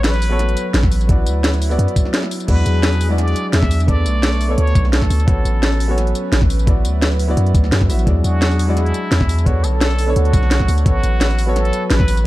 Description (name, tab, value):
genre	liquid drum and bass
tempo	172 BPM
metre	4/4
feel	swing 53% on 16ths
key	A major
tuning	A4 = 440 Hz
part	trumpet with plunger mute	melody	0.0-12.3 s	E4 to E5	-26 LUFS	equal	tape echo
part	dark grand piano	accompaniment	0.0-12.3 s	G#3 to E5	-25 LUFS	left 1 dB	none
part	warm analog pad	sustained chords	0.0-12.3 s	D3 to C#6	-25 LUFS	right 1 dB	chorus
part	long sustained 808-style bass	bass	0.0-12.3 s	A1 to F#2	-16 LUFS	equal	none
part	drum and bass drum kit	drums	0.0-12.2 s	crash cymbal, hi-hat, snare drum, tambourine	-21 LUFS	equal	none
part	electronic kick drum	drums	0.8-12.1 s	none	-16 LUFS	equal	none
room	little or no reverb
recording	dark, warm production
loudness	-14 LUFS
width	side -17 dB against mid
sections	0.0-12.3 A section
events	break 2.1-2.5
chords	0.0 A69; 1.1 D69; 2.5 E9; 3.9 Bm9; 5.3 A69; 6.7 D69; 8.1 E9; 9.5 Bm9; 10.9 A69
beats	0.04 0.39 0.74 | 1.09 1.44 1.79 2.14 | 2.49 2.84 3.19 3.53 | 3.88 4.23 4.58 4.93 | 5.28 5.63 5.97 6.32 | 6.67 7.02 7.37 7.72 | 8.07 8.42 8.77 9.12 | 9.46 9.81 10.16 10.51 | 10.86 11.21 11.56 11.91 | 12.25